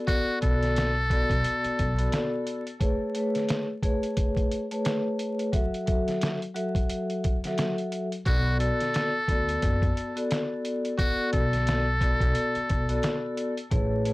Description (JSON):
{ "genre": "hip hop, boom-bap hip-hop", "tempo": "88 BPM", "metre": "4/4", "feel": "swing 59% on 16ths", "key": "B dorian", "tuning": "A4 = 440 Hz", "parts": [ { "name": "vibraphone with soft mallets", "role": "accompaniment", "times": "0.0-14.1 s", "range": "F#3 to E5", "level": "-28 LUFS", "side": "left 1 dB", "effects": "high-pass filter, low-pass filter" }, { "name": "trumpet with metal mute", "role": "melody", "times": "0.1-2.3, 8.3-13.2 s", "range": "F#4 to A4", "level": "-30 LUFS", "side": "equal", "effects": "high-pass filter, low-pass filter, tape echo" }, { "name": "trip hop sampler-style drum kit", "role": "drums", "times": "0.1-14.1 s", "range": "hi-hat, kick drum, snare drum", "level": "-28 LUFS", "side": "equal", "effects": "none" }, { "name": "upright bass", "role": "bass", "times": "0.4-2.1, 8.3-14.1 s", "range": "F#1 to D2", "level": "-28 LUFS", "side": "equal", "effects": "tube saturation" } ], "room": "little or no reverb", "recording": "dry, gritty hardware recording, vinyl crackle", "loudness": "-24 LUFS", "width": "side -20 dB against mid", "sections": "0.0-14.1 A section", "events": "break 2.8-8.3", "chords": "0.0 Bm7; 2.8 Amaj9; 5.5 F#m7; 8.3 Bm7" }